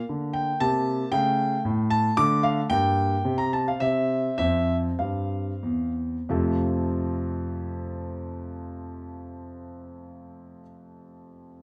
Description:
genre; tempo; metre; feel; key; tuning
classical-period piano sonatina; 89-116 BPM; 3/4; straight; F major; A4 = 438 Hz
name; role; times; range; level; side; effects
warm concert grand piano; solo; 0.0-11.6 s; E2 to D6; -26 LUFS; equal; none
room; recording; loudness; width
light reverb; none; -25 LUFS; mono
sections
0.0-6.3 A section; 6.3-10.3 B section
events
slowing down 1.9-6.3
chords
0.0 Bb; 0.6 Am/C; 1.1 A7/C#; 2.2 Dm; 2.7 Gm; 3.3 N.C.; 4.4 F5; 6.3 F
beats
0.09 0.61 | 1.13 1.65 2.18 | 2.71 3.25 3.81 | 4.39 5.00 5.63 | 6.29 6.96 7.63 | 8.30 8.96 9.63

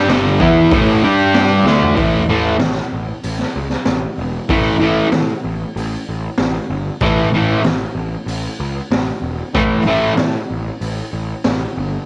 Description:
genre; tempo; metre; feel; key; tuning
garage rock duo or trio; 95 BPM; 4/4; straight; unclear; A4 = 438 Hz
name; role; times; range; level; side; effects
fuzz guitar; riff; 0.0-10.1 s; G2 to G4; -15 LUFS; equal; distortion
fuzz picked electric bass; bass; 0.0-12.0 s; E1 to A2; -24 LUFS; equal; overdrive
raw garage drum kit; drums; 0.1-11.6 s; hi-hat, kick drum, snare drum, toms; -23 LUFS; equal; cassette tape
room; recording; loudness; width
light reverb; home recording on cassette; -17 LUFS; mono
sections
0.0-2.0 A section; 2.0-12.1 B section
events
drum fill 1.7-2.0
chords
0.0 A5; 1.0 G5; 1.7 D5; 2.0 A5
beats
0.08 0.71 1.34 | 1.97 2.60 3.23 3.87 | 4.50 5.13 5.76 6.39 | 7.02 7.66 8.29 8.92 | 9.55 10.19 10.82 11.46

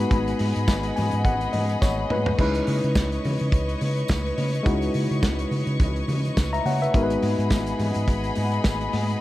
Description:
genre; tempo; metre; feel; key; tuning
disco; 105 BPM; 4/4; swing 56% on 16ths; G# minor; A4 = 441 Hz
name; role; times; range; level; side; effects
mellow tine electric piano; accompaniment; 0.0-9.2 s; G#3 to A#5; -26 LUFS; left 2 dB; none
rich studio string section; sustained chords; 0.0-9.2 s; G#4 to C#6; -31 LUFS; left 2 dB; none
hollow-body short-scale fingered electric bass; bass; 0.0-9.1 s; G#1 to C#3; -26 LUFS; equal; none
warm soul drum kit; drums; 0.0-9.2 s; crash cymbal, hi-hat, kick drum, snare drum, toms; -25 LUFS; equal; none
congas; percussion; 0.1-9.1 s; none; -34 LUFS; left 2 dB; none
tambourine; percussion; 0.7-8.8 s; none; -42 LUFS; right 6 dB; none
room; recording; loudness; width
small room ambience; none; -21 LUFS; side -15 dB against mid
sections
0.0-9.2 A section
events
tine electric piano fill 0.7-2.4; drum fill 1.8-2.4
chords
0.0 G#m7; 2.4 C#m9; 6.9 G#m7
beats
| 0.11 0.68 1.25 1.81 | 2.38 2.95 3.52 4.09 | 4.66 5.23 5.80 6.37 | 6.94 7.50 8.07 8.64

